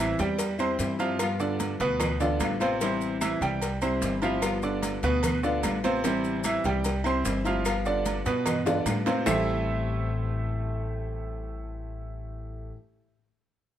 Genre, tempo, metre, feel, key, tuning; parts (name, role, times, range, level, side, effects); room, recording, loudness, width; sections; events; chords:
latin, Cuban son and guajira; 149 BPM; 4/4; straight; A minor; A4 = 440 Hz
nylon-string guitar; accompaniment; 0.0-12.8 s; A2 to F4; -31 LUFS; left 4 dB
bright concert grand piano; arpeggios; 0.0-12.7 s; B2 to C6; -29 LUFS; right 4 dB
upright bass; bass; 0.0-12.7 s; G1 to A2; -33 LUFS; equal
congas; percussion; 0.2-9.4 s; -37 LUFS; equal
cowbell and bongos; percussion; 0.2-9.4 s; -36 LUFS; left 4 dB
maracas; percussion; 0.2-9.4 s; -42 LUFS; left 9 dB
agogo bells and timbales; percussion; 0.4-9.4 s; -36 LUFS; right 5 dB
claves; percussion; 0.6-9.4 s; -40 LUFS; left 4 dB
light reverb; -25 LUFS; side -10 dB against mid
0.0-9.3 A section; 9.3-12.5 B section
drum fill 2.0-2.8, 8.5-9.3
0.0 Am7 (rootless); 1.2 G7; 2.8 Am7; 4.4 G7; 6.0 Am7; 7.7 G7; 9.3 Am7